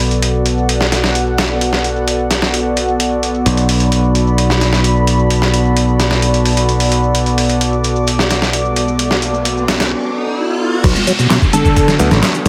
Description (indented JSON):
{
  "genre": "breakbeat, breaks",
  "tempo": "130 BPM",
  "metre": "4/4",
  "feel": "straight",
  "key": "B minor",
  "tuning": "A4 = 439 Hz",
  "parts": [
    { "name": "warbly tape-like pad", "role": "sustained chords", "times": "0.0-12.5 s", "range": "B3 to D6", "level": "-20 LUFS", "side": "equal", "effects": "chorus, built-in reverb, sidechain pumping" },
    { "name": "modern bright picked electric bass", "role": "bass", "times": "0.0-12.5 s", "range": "A1 to D2", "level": "-18 LUFS", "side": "equal", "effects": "low-pass filter" },
    { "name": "dusty soul sampler-style drum kit", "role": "drums", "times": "0.0-12.5 s", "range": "crash cymbal, hi-hat, kick drum, snare drum", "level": "-19 LUFS", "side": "equal", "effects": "overdrive, high-pass filter on hats, high-pass filter on snare, high-pass filter on cymbals, high-pass filter on kick, high-pass filter on room" },
    { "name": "electronic shaker and handclaps", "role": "drums", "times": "0.0-12.5 s", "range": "none", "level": "-32 LUFS", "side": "equal", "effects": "none" },
    { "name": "riser and downlifter", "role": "sound effects", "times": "8.6-12.5 s", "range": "none", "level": "-25 LUFS", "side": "equal", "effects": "none" },
    { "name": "tonewheel organ", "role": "riff", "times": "10.8-12.5 s", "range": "B2 to B3", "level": "-18 LUFS", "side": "equal", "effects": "slow rotary speaker, delay" },
    { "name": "congas", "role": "percussion", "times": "11.0-12.5 s", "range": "none", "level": "-24 LUFS", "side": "equal", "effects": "none" },
    { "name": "plucky unison lead", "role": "melody", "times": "11.5-12.0 s", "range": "A4", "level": "-22 LUFS", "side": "equal", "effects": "old record sound, delay" }
  ],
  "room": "moderate plate reverb, RT60 1.4 s",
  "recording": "heavily compressed radio sound, multiband compression",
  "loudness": "-14 LUFS",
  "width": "mono",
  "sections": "0.0-10.8 A section; 10.8-12.5 B section",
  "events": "riser 8.6-10.8; drop 10.8-12.5",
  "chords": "0.0 Bm7"
}